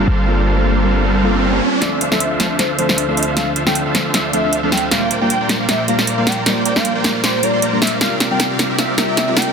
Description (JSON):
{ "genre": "future bass", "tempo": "155 BPM", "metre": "4/4", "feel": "swing 55% on 16ths, half-time", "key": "D minor", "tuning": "A4 = 435 Hz", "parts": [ { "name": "soft round pluck", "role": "accompaniment", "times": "0.0-9.5 s", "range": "F3 to Bb4", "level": "-22 LUFS", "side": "left 2 dB", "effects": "wide subtle chorus, tape echo" }, { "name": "airy breathy pad", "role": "sustained chords", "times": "0.0-9.5 s", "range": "D2 to A5", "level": "-28 LUFS", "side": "right 1 dB", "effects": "chorus" }, { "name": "dense compressed supersaw", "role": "riff", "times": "0.0-9.5 s", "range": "G3 to C6", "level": "-19 LUFS", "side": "right 1 dB", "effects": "low-pass filter, tape echo" }, { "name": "warm 808-style bass", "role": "bass", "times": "0.0-1.6 s", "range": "G1", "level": "-17 LUFS", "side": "equal", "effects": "none" }, { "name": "riser", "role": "sound effects", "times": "0.5-1.8, 8.9-9.5 s", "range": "none", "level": "-23 LUFS", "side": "right 4 dB", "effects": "none" }, { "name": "warm velvety synth lead", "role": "melody", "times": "1.8-9.5 s", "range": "C5 to G5", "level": "-22 LUFS", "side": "equal", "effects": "chorus, tape echo" }, { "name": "big-room dance drum kit", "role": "drums", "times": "1.8-9.5 s", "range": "hi-hat, snare drum", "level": "-18 LUFS", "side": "equal", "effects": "low-pass filter on snare, low-pass filter on hats" } ], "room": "light reverb, digital ambience", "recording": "dense, heavily limited modern master, high-pass filter", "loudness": "-14 LUFS", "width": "side -6 dB against mid", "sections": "0.0-1.8 A section; 1.8-9.5 B section", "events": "riser 0.5-1.8; build-up 1.8-9.5; drum fill 1.8-9.5", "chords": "0.0 Gm11; 1.8 Dm7; 4.9 Bb6; 8.0 C9sus4" }